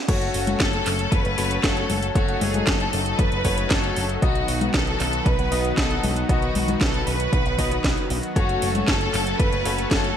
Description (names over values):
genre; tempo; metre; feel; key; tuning
italo disco; 116 BPM; 4/4; straight; F# dorian; A4 = 440 Hz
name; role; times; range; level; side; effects
rich studio violin section; melody; 0.1-10.2 s; F#4 to B4; -26 LUFS; equal; ping-pong delay
lush unison pad; sustained chords; 0.1-10.2 s; D#3 to A4; -29 LUFS; equal; chorus, vintage 12-bit sampler grit
bright grand piano; stabs; 0.1-10.2 s; A3 to F#5; -30 LUFS; left 6 dB; none
picked electric bass with an envelope filter; bass; 0.1-10.1 s; F#1 to B1; -27 LUFS; equal; none
electronic kick drum; drums; 0.1-10.0 s; none; -24 LUFS; equal; overdrive
house drum kit; drums; 0.1-10.1 s; congas, crash cymbal, handclaps, hi-hat, snare drum; -26 LUFS; equal; gated reverb
room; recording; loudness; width
light reverb; none; -19 LUFS; side -9 dB against mid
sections
0.1-10.2 A section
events
none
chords
0.1 F#m; 4.2 B; 8.4 F#m